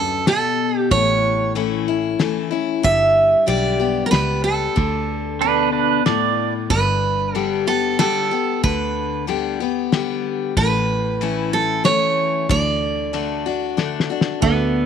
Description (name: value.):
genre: honky-tonk and classic country.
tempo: 93 BPM.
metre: 3/4.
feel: straight.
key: D major.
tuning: A4 = 440 Hz.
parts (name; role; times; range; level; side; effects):
picked steel-string acoustic guitar; melody; 0.0-14.9 s; B3 to E5; -19 LUFS; right 4 dB; none.
picked steel-string acoustic guitar; accompaniment; 0.0-14.9 s; F#2 to G4; -22 LUFS; left 9 dB; none.
fingered electric bass; bass; 0.0-14.9 s; G1 to D2; -25 LUFS; right 1 dB; none.
cloth-damped thuddy drum kit; drums; 0.3-14.6 s; kick drum, ride cymbal, snare drum; -23 LUFS; left 3 dB; none.
pedal steel guitar; second line; 5.4-6.5 s; D4 to D5; -19 LUFS; right 15 dB; none.
dark upright piano; accompaniment; 14.4-14.9 s; D4 to A4; -24 LUFS; right 15 dB; none.
room: light reverb, studio ambience.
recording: 1960s-style stereo with parts hard left and right.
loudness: -17 LUFS.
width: side -7 dB against mid.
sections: 0.0-14.4 A section.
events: drum fill 13.8-14.4.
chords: 0.0 D; 0.9 A; 2.8 G; 4.8 D5; 6.7 G; 10.6 A; 12.5 D.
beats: 0.27 | 0.91 1.55 2.20 | 2.84 3.49 4.13 | 4.78 5.42 6.06 | 6.71 7.35 7.99 | 8.64 9.28 9.92 | 10.56 11.21 11.85 | 12.49 13.13 13.78 | 14.42.